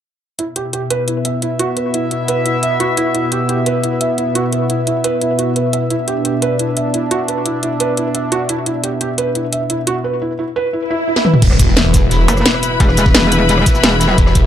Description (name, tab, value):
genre	dark technical drum and bass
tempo	174 BPM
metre	4/4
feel	straight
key	unclear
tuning	A4 = 440 Hz
part	sweeping resonant pad	sustained chords	0.4-14.5 s	B2 to E5	-18 LUFS	equal	chorus, sidechain pumping
part	felt-muted upright piano	arpeggios	0.4-11.3 s	E4 to E5	-19 LUFS	right 2 dB	sidechain pumping, low-pass filter, ping-pong delay
part	drum and bass drum kit	drums	0.4-14.4 s	cabasa, crash cymbal, hi-hat, rim click, snare drum, toms	-16 LUFS	equal	none
part	swell and impact	sound effects	10.8-12.8 s	none	-20 LUFS	equal	none
part	phased detuned saw bass	bass	11.4-14.5 s	E1	-14 LUFS	equal	phaser, overdrive
part	crunchy breakbeat drum kit	drums	11.4-14.4 s	hi-hat, snare drum	-28 LUFS	equal	none
part	electronic kick drum	drums	11.4-14.4 s	none	-13 LUFS	equal	none
part	rich symphonic string section	texture	11.4-14.5 s	B3 to B5	-19 LUFS	left 3 dB	sidechain pumping
part	metallic wobble bass	bass	12.3-14.2 s	E1 to F#1	-14 LUFS	equal	chorus
room	light reverb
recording	none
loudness	-13 LUFS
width	side -10 dB against mid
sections	0.4-11.4 A section; 11.4-14.5 B section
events	swell 10.8-11.4; drum fill 11.2; drop 11.4-14.5; impact 11.4-12.8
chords	0.4 E5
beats	| 0.39 0.73 1.08 1.42 | 1.77 2.11 2.46 2.80 | 3.15 3.49 3.84 4.18 | 4.53 4.87 5.21 5.56 | 5.91 6.25 6.59 6.94 | 7.28 7.63 7.97 8.32 | 8.66 9.01 9.35 9.70 | 10.04 10.39 10.73 11.08 | 11.42 11.77 12.11 12.46 | 12.80 13.15 13.49 13.84 | 14.18